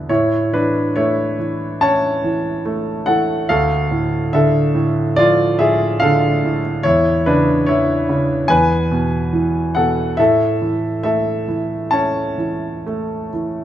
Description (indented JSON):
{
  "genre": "classical, lyrical solo piano",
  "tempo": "71 BPM",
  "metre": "4/4",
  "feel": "rubato",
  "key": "A major",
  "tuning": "A4 = 440 Hz",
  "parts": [
    { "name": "warm concert grand piano", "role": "solo", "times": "0.0-13.6 s", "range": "D2 to A5", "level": "-15 LUFS", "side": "equal", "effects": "none" }
  ],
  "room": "moderate recital hall reverb, RT60 1.6 s",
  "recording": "none",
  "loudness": "-15 LUFS",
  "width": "side -11 dB against mid",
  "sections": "0.1-13.6 A section",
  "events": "none",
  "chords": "0.1 A; 3.5 Dm; 6.9 C#m7/E; 8.5 E; 10.2 A"
}